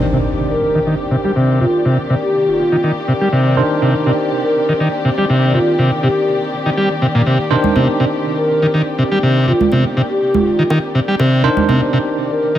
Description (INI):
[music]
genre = breakbeat, breaks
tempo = 122 BPM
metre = 4/4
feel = swing 54% on 16ths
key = C minor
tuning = A4 = 441 Hz
[part]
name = dark studio string section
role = sustained chords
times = 0.0-12.6 s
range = Eb3 to D5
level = -21 LUFS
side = left 2 dB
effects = none
[part]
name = bell-like tine electric piano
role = stabs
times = 0.0-12.6 s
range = D4 to C5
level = -21 LUFS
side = right 2 dB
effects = medium stereo tremolo, low-pass filter, digital delay
[part]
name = impact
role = sound effects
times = 0.0-1.6 s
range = none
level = -24 LUFS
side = equal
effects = none
[part]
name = combo organ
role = riff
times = 0.1-12.6 s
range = Bb2 to G3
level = -15 LUFS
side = equal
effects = overdrive, low-pass filter, digital delay
[part]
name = vibraphone with soft mallets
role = melody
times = 0.5-12.5 s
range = F4 to Bb4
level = -18 LUFS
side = equal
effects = telephone sound, vintage 12-bit sampler grit, digital delay
[part]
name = congas and bongos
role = percussion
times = 7.6-11.8 s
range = none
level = -19 LUFS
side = right 5 dB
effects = none
[sound]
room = light reverb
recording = faint mains hum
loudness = -13 LUFS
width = side -12 dB against mid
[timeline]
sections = 0.0-12.6 A section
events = impact 0.0-1.6; filter sweep on transistor combo organ 0.0-12.6; filter sweep on tine electric piano 0.0-12.6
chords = 0.0 Cm9